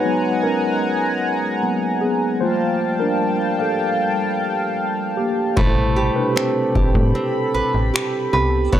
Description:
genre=contemporary R&B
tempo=76 BPM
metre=4/4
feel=straight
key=unclear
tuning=A4 = 440 Hz
part: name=mellow tine electric piano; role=accompaniment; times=0.0-8.8 s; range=B2 to F5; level=-21 LUFS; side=equal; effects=medium stereo tremolo
part: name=chorused pulse-width pad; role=sustained chords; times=0.0-8.8 s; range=G3 to C#6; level=-22 LUFS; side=equal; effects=none
part: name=nylon-string guitar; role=arpeggios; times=5.6-8.8 s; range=A3 to C#5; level=-21 LUFS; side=right 2 dB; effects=tape echo
part: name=slap-like FM bass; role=bass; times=5.6-8.8 s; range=A1 to A2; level=-20 LUFS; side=equal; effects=none
part: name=booming analog drum machine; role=drums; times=5.6-8.8 s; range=finger snaps, kick drum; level=-19 LUFS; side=equal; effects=none
room=digital ambience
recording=dry, gritty hardware recording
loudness=-17 LUFS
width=side -11 dB against mid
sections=0.0-8.8 A section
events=tine electric piano solo 0.0-8.8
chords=0.0 G#m9; 2.4 Gm9; 5.6 Am9

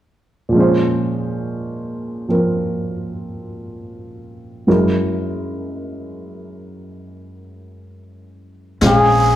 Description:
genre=jazz ballad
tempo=58 BPM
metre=4/4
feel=swing 69% on 8ths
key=Bb minor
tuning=A4 = 440 Hz
part: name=warm baby grand piano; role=accompaniment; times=0.5-9.4 s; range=Gb2 to F5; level=-19 LUFS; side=right 1 dB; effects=none
part: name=upright bass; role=bass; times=8.8-9.4 s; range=Bb1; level=-16 LUFS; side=equal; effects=none
part: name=brushed snare drum and snare drum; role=drums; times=8.8-9.4 s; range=none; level=-24 LUFS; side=left 3 dB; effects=none
part: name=trumpet with cup mute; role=melody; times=8.9-9.4 s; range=Ab4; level=-13 LUFS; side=left 1 dB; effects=none
room=moderate large studio reverb, RT60 1.2 s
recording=heard from further back in the room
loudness=-16 LUFS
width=side -12 dB against mid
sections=0.5-8.8 A section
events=none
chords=0.5 Bbm9; 4.7 Gb7; 8.8 Bbm9

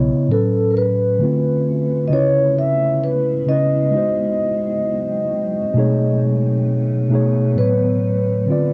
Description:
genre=hip hop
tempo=66 BPM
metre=4/4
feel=swing 65% on 16ths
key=unclear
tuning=A4 = 440 Hz
part: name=mellow tine electric piano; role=accompaniment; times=0.0-8.7 s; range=A2 to D#5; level=-20 LUFS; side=equal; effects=cassette tape, low-pass filter
part: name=vibraphone with soft mallets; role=melody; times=0.3-8.7 s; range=A4 to E5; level=-22 LUFS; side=equal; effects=low-pass filter
part: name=granular cloud pad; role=sustained chords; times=0.8-8.7 s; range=C#3 to E4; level=-31 LUFS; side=equal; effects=built-in reverb, low-pass filter, cassette tape
room=moderate studio reverb, RT60 0.6 s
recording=home recording on cassette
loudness=-18 LUFS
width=mono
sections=0.3-8.7 A section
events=none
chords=0.3 A69; 1.2 Dm7; 2.1 C#m7; 3.9 G#7; 5.7 B13; 7.6 A69

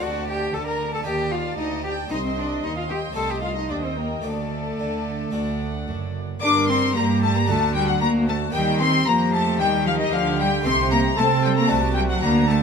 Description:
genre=classical, baroque-style concerto movement with solo episodes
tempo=114 BPM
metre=4/4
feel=straight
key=unclear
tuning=A4 = 443 Hz
part: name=warm cello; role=melody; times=0.0-12.6 s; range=Eb3 to Bb4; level=-25 LUFS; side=left 1 dB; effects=none
part: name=warm chamber violin section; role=melody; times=0.0-12.6 s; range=Eb5 to D6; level=-26 LUFS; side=left 5 dB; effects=none
part: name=warm chamber violin section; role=second line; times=0.0-12.6 s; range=A4 to D6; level=-28 LUFS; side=left 3 dB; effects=none
part: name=dark chamber viola section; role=accompaniment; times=0.0-12.6 s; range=F#4 to Eb5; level=-30 LUFS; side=left 2 dB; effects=none
part: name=harpsichord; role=accompaniment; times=0.0-12.6 s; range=C2 to G4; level=-33 LUFS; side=left 1 dB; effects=none
part: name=rich chamber cello section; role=bass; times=0.0-12.6 s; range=C2 to C4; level=-28 LUFS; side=right 4 dB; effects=none
part: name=rich chamber double bass section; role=bass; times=0.0-12.6 s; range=F#1 to C3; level=-28 LUFS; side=right 6 dB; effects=none
room=light reverb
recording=close, detailed microphones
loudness=-20 LUFS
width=side -6 dB against mid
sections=0.0-6.4 A section; 6.4-12.6 B section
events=none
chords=0.0 D5; 1.1 Eb5; 2.1 Cm; 3.2 Adim/C; 4.2 D5; 5.3 D; 6.4 Gm; 7.5 D; 8.5 Eb; 10.7 Am7b5/C; 11.7 D7/C

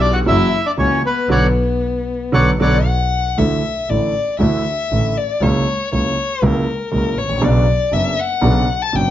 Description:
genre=tango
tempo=118 BPM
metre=4/4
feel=rubato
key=B minor, D major from 3.4 s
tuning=A4 = 440 Hz
part: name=bandoneon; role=melody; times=0.0-2.8 s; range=B4 to F#5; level=-19 LUFS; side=equal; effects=plate reverb
part: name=warm violin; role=second line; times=0.0-9.1 s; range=B3 to A5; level=-20 LUFS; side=left 5 dB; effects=none
part: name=warm grand piano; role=accompaniment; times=0.0-9.1 s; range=F#1 to G4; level=-19 LUFS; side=right 2 dB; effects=none
part: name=rich double bass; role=bass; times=0.0-9.1 s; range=F#1 to D2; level=-19 LUFS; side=equal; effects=none
room=light reverb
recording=dark, warm production, nothing above 7.5 kHz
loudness=-14 LUFS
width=side -12 dB against mid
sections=0.0-3.4 A section; 3.4-9.1 B section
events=band accent 1.3-3.4; violin solo 3.4-9.1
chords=0.3 F#7; 1.3 Bmadd9; 3.4 Dsus2; 5.4 F#7/C#; 7.4 Bmadd9

